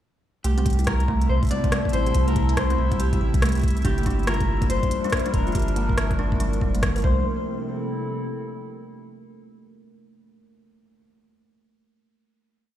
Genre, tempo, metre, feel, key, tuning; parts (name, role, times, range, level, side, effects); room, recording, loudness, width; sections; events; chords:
IDM; 141 BPM; 4/4; swing 62% on 16ths; C mixolydian; A4 = 438 Hz
electric guitar at the edge of break-up; melody; 0.4-7.2 s; G4 to D5; -30 LUFS; left 4 dB; ping-pong delay
warbly tape-like pad; sustained chords; 1.3-8.9 s; C3 to A5; -31 LUFS; left 1 dB; chorus, built-in reverb, vintage 12-bit sampler grit, sidechain pumping
kalimba; arpeggios; 0.4-7.2 s; A3 to Bb4; -30 LUFS; right 2 dB; vintage 12-bit sampler grit, low-pass filter, digital delay
warm sub bass; bass; 0.4-7.2 s; F1 to C2; -23 LUFS; equal
organic electronic drum kit; drums; 0.4-7.0 s; hi-hat, rim click; -30 LUFS; equal
bubbling stepped-filter texture; texture; 0.7-7.3 s; E4 to E5; -39 LUFS; equal; chorus, built-in reverb
electronic kick drum; drums; 0.7-7.1 s; -24 LUFS; equal
light reverb, digital ambience; played on a big sound system in a bare room, large studio reverb; -20 LUFS; side -12 dB against mid
0.4-7.3 groove; 7.3-9.0 final chord
filter sweep on kalimba 0.4-7.3
0.4 C6; 3.8 Gm7; 7.0 C6